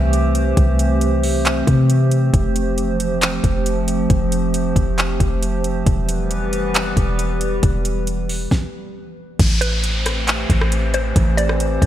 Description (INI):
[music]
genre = hip hop, atmospheric cloud-rap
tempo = 136 BPM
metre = 4/4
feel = half-time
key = A minor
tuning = A4 = 440 Hz
[part]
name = warbly tape-like pad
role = sustained chords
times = 0.0-11.9 s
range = E3 to C5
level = -21 LUFS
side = right 1 dB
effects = chorus, built-in reverb, sidechain pumping
[part]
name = warm 808-style bass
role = bass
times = 0.0-11.9 s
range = E1 to C3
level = -19 LUFS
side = equal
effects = none
[part]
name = smooth R&B drum kit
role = drums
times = 0.1-11.9 s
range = crash cymbal, handclaps, hi-hat, kick drum, rim click, snare drum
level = -19 LUFS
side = equal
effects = overdrive
[part]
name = downlifter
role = sound effects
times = 9.4-11.9 s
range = none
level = -26 LUFS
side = right 1 dB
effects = none
[part]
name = mallet-like synth pluck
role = melody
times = 9.6-11.6 s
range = B4 to D5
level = -25 LUFS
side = equal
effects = chorus, phaser, ping-pong delay
[sound]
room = light reverb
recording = none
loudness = -16 LUFS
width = side -12 dB against mid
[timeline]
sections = 0.0-9.4 A section; 9.4-11.9 B section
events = stop 8.5-9.4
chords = 0.0 C6; 2.3 Fadd9; 5.9 Em; 9.4 Am7